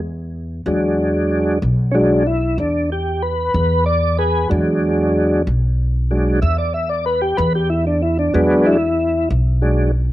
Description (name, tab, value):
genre	slow blues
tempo	62 BPM (dotted quarters)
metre	12/8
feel	straight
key	E mixolydian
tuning	A4 = 440 Hz
part	upright bass	bass	0.0-10.1 s	B1 to E2	-19 LUFS	equal	none
part	tonewheel organ	sustained chords	0.7-9.9 s	F#3 to E5	-17 LUFS	equal	chorus vibrato, slow rotary speaker, cassette tape, plate reverb
room	moderate studio reverb, RT60 0.6 s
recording	home recording on cassette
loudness	-15 LUFS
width	side -15 dB against mid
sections	0.0-10.1 A section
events	tonewheel organ solo 0.0-10.1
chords	0.0 E9